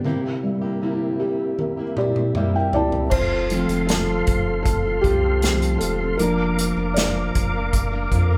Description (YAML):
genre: pop ballad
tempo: 78 BPM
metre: 4/4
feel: straight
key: F major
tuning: A4 = 440 Hz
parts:
  - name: felt-muted upright piano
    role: accompaniment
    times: 0.0-8.4 s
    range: C3 to A5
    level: -25 LUFS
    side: equal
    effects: none
  - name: tonewheel organ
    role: sustained chords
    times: 0.0-8.4 s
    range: C3 to D6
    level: -31 LUFS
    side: equal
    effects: overdrive, chorus vibrato, slow rotary speaker
  - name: fingerpicked plugged-in steel-string acoustic guitar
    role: arpeggios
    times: 0.0-8.4 s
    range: C3 to Bb4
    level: -32 LUFS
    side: equal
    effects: none
  - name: unplugged drum kit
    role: drums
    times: 1.6-8.3 s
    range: crash cymbal, hi-hat, kick drum, snare drum, toms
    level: -26 LUFS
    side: equal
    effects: none
  - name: saturated sub bass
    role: bass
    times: 3.1-8.4 s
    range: E1 to F2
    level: -27 LUFS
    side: equal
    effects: none
room: light reverb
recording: band playing live in one room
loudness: -21 LUFS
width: mono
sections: 0.0-3.1 A section; 3.1-8.4 B section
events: felt piano fill 1.6-3.1; drum fill 1.6-3.1; felt piano solo 3.1-8.4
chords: 0.0 C7; 3.1 F; 6.2 Bb/F